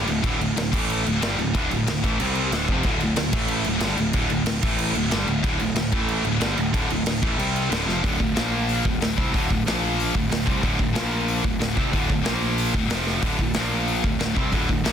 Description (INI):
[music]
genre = heavy metal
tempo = 185 BPM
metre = 4/4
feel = straight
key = D minor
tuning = A4 = 440 Hz
[part]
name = heavy high-gain guitar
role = riff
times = 0.0-14.9 s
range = D2 to C4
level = -26 LUFS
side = left 13 dB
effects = distortion
[part]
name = heavy high-gain guitar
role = riff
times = 0.0-14.9 s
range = D2 to C4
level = -26 LUFS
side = right 10 dB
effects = distortion
[part]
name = fuzz picked electric bass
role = bass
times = 0.0-14.9 s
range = D1 to C2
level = -28 LUFS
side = equal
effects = overdrive
[part]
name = big rock drum kit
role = drums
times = 0.1-14.9 s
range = crash cymbal, hi-hat, kick drum, snare drum, splash cymbal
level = -26 LUFS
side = equal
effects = none
[sound]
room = small room ambience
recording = dense, heavily limited modern master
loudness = -20 LUFS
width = side -8 dB against mid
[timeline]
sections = 0.0-8.0 A section; 8.0-14.9 B section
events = drum fill 7.9, 13.1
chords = 0.0 D5; 0.7 A5; 1.0 D5; 2.2 C5; 2.5 Dm; 3.3 A5; 3.7 D5; 4.6 A5; 5.0 D5; 5.9 A5; 6.2 D5; 7.4 C5; 7.7 Dm; 8.0 D5; 8.4 Bb5; 8.8 D5; 9.7 Bb5; 10.1 D5; 10.9 Bb5; 11.4 D5; 12.2 Bb5; 12.7 D5; 12.9 F5; 13.2 D5; 13.5 Bb5; 14.0 D5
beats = | 0.23 0.56 0.89 1.21 | 1.54 1.86 2.19 2.51 | 2.84 3.16 3.49 3.81 | 4.14 4.46 4.79 5.11 | 5.44 5.76 6.08 6.41 | 6.73 7.06 7.38 7.71 | 8.03 8.35 8.68 9.00 | 9.33 9.65 9.98 10.30 | 10.62 10.95 11.27 11.60 | 11.92 12.25 12.57 12.90 | 13.22 13.55 13.87 14.20 | 14.52 14.85